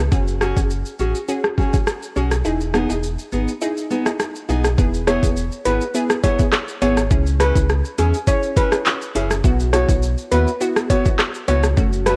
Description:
dancehall; 103 BPM; 4/4; straight; E major; A4 = 441 Hz
sub bass with octave; bass; 0.0-12.2 s; E1 to E2; -23 LUFS; equal
glassy wavetable pluck; accompaniment; 0.1-12.2 s; A3 to G#4; -28 LUFS; equal; chorus
island pop drum kit; drums; 0.1-12.2 s; handclaps, hi-hat, kick drum, rim click, shaker; -22 LUFS; equal; overdrive
nylon-string guitar; arpeggios; 0.4-12.2 s; A3 to G#4; -27 LUFS; equal
steel pan; melody; 5.1-12.2 s; G#4 to C#5; -25 LUFS; equal
light reverb; worn, warbling old tape, cassette tape, warbly pitch drift; -19 LUFS; mono
0.0-4.8 A section; 4.8-12.2 B section
kick muted 2.5-4.8
0.1 F#sus2; 2.5 Emaj7; 4.8 E; 7.1 C#m; 9.4 Bsus4

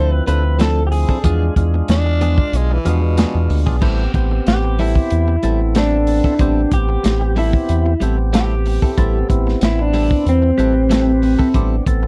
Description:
straight-eighth soul blues; 93 BPM; 4/4; straight; A minor; A4 = 440 Hz
electric guitar through a small old amp; melody; 0.0-11.5 s; C4 to C5; -22 LUFS; equal; warbly pitch drift
percussive tonewheel organ; accompaniment; 0.0-12.1 s; F3 to B4; -28 LUFS; equal; slow rotary speaker
direct-recorded clean electric guitar; stabs; 0.0-12.1 s; F3 to A4; -27 LUFS; equal
round analog bass; bass; 0.0-12.1 s; A1 to E2; -19 LUFS; equal
crunchy breakbeat drum kit; drums; 0.3-12.0 s; crash cymbal, hi-hat, kick drum, snare drum; -21 LUFS; equal
growling tenor saxophone; second line; 1.9-3.7 s; B2 to D4; -26 LUFS; equal
little or no reverb; dry, close 1970s-style studio recording; -16 LUFS; mono
0.0-3.8 A section; 3.8-12.1 B section
clean electric guitar solo 3.8-12.1
0.0 Dm7; 1.2 E7b9; 3.8 Am7

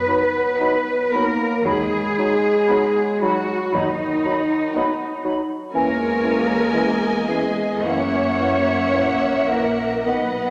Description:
classical, slow romantic movement for symphony orchestra; 50-61 BPM; 4/4; rubato; B major; A4 = 441 Hz
mellow French horn section; sustained chords; 0.0-10.5 s; D#3 to C#4; -27 LUFS; equal
rich symphonic cello section; bass; 0.0-10.5 s; D#4 to C#5; -24 LUFS; equal
warm symphonic double bass section; bass; 0.0-10.5 s; F#1 to F#2; -35 LUFS; equal
dark clarinet; second line; 0.1-10.2 s; A#3 to D#4; -32 LUFS; equal
hollow flute section; second line; 0.1-10.2 s; F#5 to B5; -30 LUFS; equal
mellow bassoon; accompaniment; 0.1-10.2 s; D#3 to F#3; -30 LUFS; equal
rich studio violin section; melody; 0.6-10.5 s; F#5 to G#5; -34 LUFS; equal
dark symphonic violin section; second line; 0.6-10.5 s; C#5 to E5; -30 LUFS; equal
rich symphonic viola section; accompaniment; 0.6-10.5 s; G#3 to D#4; -31 LUFS; equal
wet concert hall reverb, RT60 1.9 s; -20 LUFS; mono
0.0-10.5 A section
0.0 B; 1.7 B/D#; 5.7 C#m/E; 7.9 F#7

